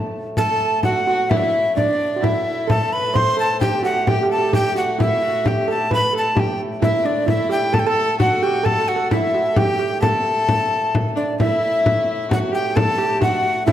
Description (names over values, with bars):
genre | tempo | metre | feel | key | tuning
medieval dance | 131 BPM | 3/4 | straight | unclear | A4 = 440 Hz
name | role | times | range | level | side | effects
pedal harmonium | drone | 0.0-13.7 s | A2 | -30 LUFS | left 1 dB | none
breathy tenor recorder | melody | 0.4-13.7 s | D5 to C6 | -20 LUFS | equal | none
rich fiddle | second line | 0.4-13.7 s | D4 to C5 | -27 LUFS | left 4 dB | none
steel pan | second line | 0.4-13.7 s | D4 to C5 | -24 LUFS | right 6 dB | none
frame drum | percussion | 0.4-13.7 s | none | -22 LUFS | left 2 dB | none
room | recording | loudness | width
wet recital hall reverb, RT60 1.8 s | none | -16 LUFS | side -11 dB against mid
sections
0.4-11.4 A section; 11.4-13.7 B section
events
none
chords
none